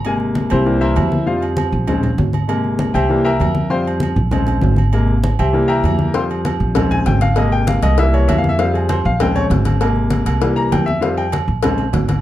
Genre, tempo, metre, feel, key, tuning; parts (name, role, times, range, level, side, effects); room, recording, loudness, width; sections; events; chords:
latin, salsa; 197 BPM; 4/4; straight; F minor; A4 = 441 Hz
bright baby grand piano; accompaniment; 0.0-11.8 s; C3 to C6; -18 LUFS; left 2 dB
upright bass; bass; 0.0-12.2 s; Ab1 to F2; -18 LUFS; right 1 dB
agogo bells and timbales; percussion; 0.0-12.2 s; -26 LUFS; right 9 dB
congas; percussion; 0.0-12.2 s; -22 LUFS; equal
cowbell; percussion; 6.1-12.2 s; -25 LUFS; left 6 dB
moderate large studio reverb, RT60 0.8 s; dark, warm production; -14 LUFS; side -14 dB against mid
0.0-12.2 A section
grand piano solo 0.0-12.2
0.1 Abadd9; 0.7 C7; 1.3 Fsus2; 1.9 Bbm7; 2.5 Abadd9; 3.1 C7; 3.7 Fsus2; 4.3 Bbm7; 4.9 Abadd9; 5.5 C7; 6.2 Fsus2; 6.8 Bbm7; 7.4 Abadd9; 8.0 C7; 8.6 Fsus2; 9.2 Bbm7; 9.8 Abadd9; 10.4 C7; 11.0 Fsus2; 11.6 Bbm7